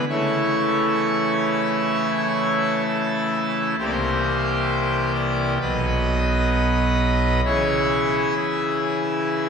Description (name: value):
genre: classical, chorale-style piece for pipe organ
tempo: 65 BPM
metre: 4/4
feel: rubato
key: unclear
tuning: A4 = 440 Hz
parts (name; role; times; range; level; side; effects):
- pipe organ, full organ; solo; 0.0-9.5 s; B1 to D#5; -19 LUFS; equal; none
room: wet church reverb, RT60 2.6 s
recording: minimal, uncompressed stereo recording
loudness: -19 LUFS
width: side -6 dB against mid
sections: 0.0-9.5 A section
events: none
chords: 0.1 A/C#; 3.8 C7; 5.6 B; 7.5 C#m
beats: | 0.09 1.02 1.95 2.87 | 3.79 4.71 5.62 6.54 | 7.46 8.37 9.27